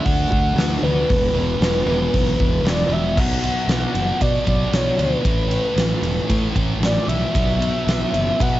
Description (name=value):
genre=rock, shoegaze and dream pop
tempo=115 BPM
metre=4/4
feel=straight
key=B minor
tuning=A4 = 440 Hz
part: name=mellow horn-like synth lead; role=melody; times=0.0-8.6 s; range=B4 to F#5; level=-23 LUFS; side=equal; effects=chorus, cassette tape, analog delay
part: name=thick fuzz guitar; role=riff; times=0.0-8.6 s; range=E2 to D4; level=-24 LUFS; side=equal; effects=distortion, lush chorus, cassette tape
part: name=fuzz fingered electric bass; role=bass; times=0.1-8.6 s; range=E1 to B2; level=-23 LUFS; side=equal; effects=overdrive
part: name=huge arena drum kit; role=drums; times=0.1-8.5 s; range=crash cymbal, hi-hat, kick drum, ride cymbal, snare drum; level=-22 LUFS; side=equal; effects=cassette tape
room=little or no reverb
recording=home recording on cassette, nothing above 7.8 kHz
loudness=-17 LUFS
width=side -14 dB against mid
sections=0.0-3.2 A section; 3.2-8.6 B section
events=none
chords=0.0 D; 1.1 E5; 3.2 Bm; 5.3 Asus2; 7.3 B5